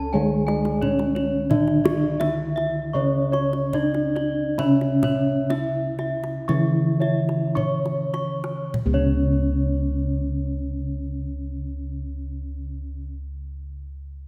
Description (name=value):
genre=Javanese gamelan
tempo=48-88 BPM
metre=4/4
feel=straight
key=unclear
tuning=A4 = 441 Hz
part: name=gamelan-type bronze metallophone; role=melody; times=0.0-13.1 s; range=C#4 to C#5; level=-29 LUFS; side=equal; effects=none
part: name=gamelan-type bronze metallophone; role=accompaniment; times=0.0-13.1 s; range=C#3 to C#4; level=-30 LUFS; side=equal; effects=none
part: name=gamelan-type bronze metallophone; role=arpeggios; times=0.0-13.1 s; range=C#5 to C#6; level=-33 LUFS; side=equal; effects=none
part: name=gamelan-type bossed gongs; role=bass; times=0.0-13.1 s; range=C#2 to C#5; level=-29 LUFS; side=equal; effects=none
part: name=gamelan-type bossed gongs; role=arpeggios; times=0.1-13.1 s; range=C#5 to C#6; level=-35 LUFS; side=equal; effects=none
part: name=kendang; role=percussion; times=0.5-9.3 s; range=none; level=-32 LUFS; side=equal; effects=none
room=moderate concert hall reverb, RT60 2.3 s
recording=none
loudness=-23 LUFS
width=mono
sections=0.0-8.7 A section; 8.7-13.7 B section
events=slowing down 1.5-8.7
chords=none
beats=0.14 0.82 | 1.50 2.20 2.94 3.74 | 4.59 5.50 6.49 7.57 | 8.75 9.99 11.23 12.47